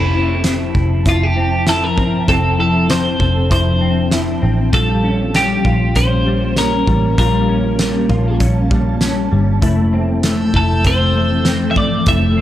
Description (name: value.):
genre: dream pop.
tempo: 98 BPM.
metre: 4/4.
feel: straight.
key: F major.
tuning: A4 = 440 Hz.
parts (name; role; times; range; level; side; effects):
twelve-string electric guitar; melody; 0.0-12.4 s; E4 to E5; -19 LUFS; equal; spring reverb, tape echo.
ethereal airy pad; sustained chords; 0.0-12.4 s; E3 to A5; -22 LUFS; equal; ensemble chorus, built-in reverb.
semi-hollow electric guitar; arpeggios; 0.0-12.4 s; G3 to A4; -20 LUFS; left 2 dB; ensemble chorus, tape echo.
vintage muted picked electric bass; bass; 0.0-12.4 s; F1 to Bb1; -17 LUFS; equal; none.
loose indie drum kit; drums; 0.4-12.2 s; hi-hat, kick drum, snare drum, tambourine; -20 LUFS; equal; none.
drifting glass-harmonics texture; texture; 10.3-10.9 s; E6; -30 LUFS; right 1 dB; chorus, built-in reverb, tape echo.
room: small room ambience.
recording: none.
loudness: -13 LUFS.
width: side -12 dB against mid.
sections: 0.0-12.4 A section.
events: none.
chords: 0.0 Fmaj7; 4.7 Bbm6; 9.6 Fmaj7.